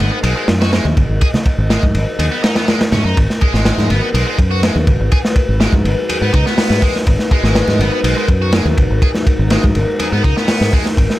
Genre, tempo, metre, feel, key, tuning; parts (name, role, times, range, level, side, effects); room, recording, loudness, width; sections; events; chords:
breakbeat, breaks; 123 BPM; 4/4; straight; G# minor; A4 = 440 Hz
dark analog pad; sustained chords; 0.0-11.2 s; G#3 to D#5; -22 LUFS; left 2 dB; chorus, phaser, sidechain pumping
distorted electric guitar; riff; 0.0-10.9 s; G#3 to G#4; -22 LUFS; equal; overdrive, tube saturation, tape echo
fingered electric bass; bass; 0.0-11.1 s; G#1 to G#2; -16 LUFS; equal; tube saturation
crunchy breakbeat drum kit; drums; 0.0-11.2 s; hi-hat, kick drum, ride cymbal, snare drum; -15 LUFS; equal
congas; percussion; 0.9-10.8 s; -25 LUFS; right 1 dB
light reverb, small room ambience; -12 LUFS; side -16 dB against mid
0.0-3.2 A section; 3.2-11.2 B section
drop 3.2-11.2
0.0 G#m7